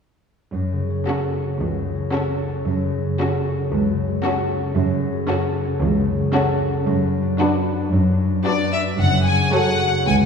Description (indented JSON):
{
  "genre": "cinematic, playful, whimsical film cue",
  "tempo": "114 BPM",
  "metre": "4/4",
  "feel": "straight",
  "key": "F# minor",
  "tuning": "A4 = 441 Hz",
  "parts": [
    { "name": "concert harp", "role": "arpeggios", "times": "0.5-10.3 s", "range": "F#2 to B4", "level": "-22 LUFS", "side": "left 2 dB", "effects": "none" },
    { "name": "rich studio cello section", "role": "bass", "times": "0.5-10.3 s", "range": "C#2 to F#2", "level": "-23 LUFS", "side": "right 2 dB", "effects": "none" },
    { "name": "rich studio violin section", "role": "melody", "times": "1.1-10.1 s", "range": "A4 to G#5", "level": "-25 LUFS", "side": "left 4 dB", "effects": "none" },
    { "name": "warm studio violin section", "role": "second line", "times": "1.1-9.9 s", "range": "F#4 to C#5", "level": "-28 LUFS", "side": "left 1 dB", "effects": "none" },
    { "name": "rich studio viola section", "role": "accompaniment", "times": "1.1-9.9 s", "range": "F#3 to F#4", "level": "-27 LUFS", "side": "right 1 dB", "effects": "none" },
    { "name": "dark studio double bass section", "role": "bass", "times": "9.0-10.3 s", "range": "F#1 to C#2", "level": "-24 LUFS", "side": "right 4 dB", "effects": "none" }
  ],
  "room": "wet church reverb, RT60 2.8 s",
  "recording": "recorded in a church or concert hall, studio reverb",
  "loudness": "-18 LUFS",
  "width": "side -6 dB against mid",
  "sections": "0.5-9.0 A section; 9.0-10.3 B section",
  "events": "none",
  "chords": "0.5 F#m; 6.9 Bm/F#; 9.0 F#m"
}